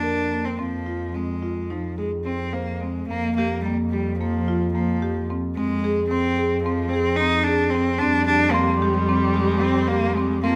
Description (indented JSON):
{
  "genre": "contemporary instrumental, chamber music in an uneven meter",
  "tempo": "220 BPM (eighths)",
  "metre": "9/8",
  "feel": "straight",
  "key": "F dorian",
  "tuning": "A4 = 440 Hz",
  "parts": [
    { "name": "bright cello", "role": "melody", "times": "0.0-10.6 s", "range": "F3 to Eb4", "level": "-27 LUFS", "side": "equal", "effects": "none" },
    { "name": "marimba with medium mallets", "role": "arpeggios", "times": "0.0-10.6 s", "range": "Bb3 to C5", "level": "-27 LUFS", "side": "equal", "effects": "none" },
    { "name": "dark double bass", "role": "bass", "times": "0.0-10.6 s", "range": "F2", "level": "-29 LUFS", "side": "equal", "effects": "none" },
    { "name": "dark viola", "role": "second line", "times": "8.0-10.6 s", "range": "F3 to G3", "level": "-28 LUFS", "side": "equal", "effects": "none" },
    { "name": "glockenspiel with soft plastic mallets", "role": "texture", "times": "8.5-10.4 s", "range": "C6", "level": "-30 LUFS", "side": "equal", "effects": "none" }
  ],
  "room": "light reverb",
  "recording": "close, detailed microphones",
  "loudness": "-23 LUFS",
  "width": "mono",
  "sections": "0.0-3.1 A section; 3.1-10.6 B section",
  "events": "none",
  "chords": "0.0 Ebsus2/F (rootless); 0.6 Fm; 3.1 Gm7/F; 5.6 Fm; 8.0 C5/F",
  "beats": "0.02 0.30 | 0.58 0.85 1.13 1.41 1.69 1.97 2.25 2.54 2.82 | 3.10 3.38 3.65 3.93 4.20 4.48 4.75 5.02 5.30 | 5.57 5.84 6.11 6.38 6.65 6.92 7.19 7.46 7.73 | 8.00 8.28 8.54 8.81 9.08 9.36 9.62 9.89 10.16 | 10.43"
}